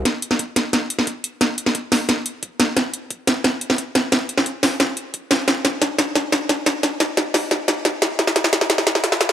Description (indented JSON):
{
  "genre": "dark technical drum and bass",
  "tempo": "177 BPM",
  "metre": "4/4",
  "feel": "straight",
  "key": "none",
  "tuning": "none",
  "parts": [
    { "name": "drum and bass drum kit", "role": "drums", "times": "0.1-9.3 s", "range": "hi-hat, snare drum", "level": "-17 LUFS", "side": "equal", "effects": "none" },
    { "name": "electronic kick drum", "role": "drums", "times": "0.1-9.3 s", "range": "none", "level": "-37 LUFS", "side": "equal", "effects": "none" }
  ],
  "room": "light reverb",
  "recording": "high-pass filter",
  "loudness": "-18 LUFS",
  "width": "side -10 dB against mid",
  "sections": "0.1-9.3 A section",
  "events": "build-up 0.1-9.3; drum fill 0.1-9.3",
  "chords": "none"
}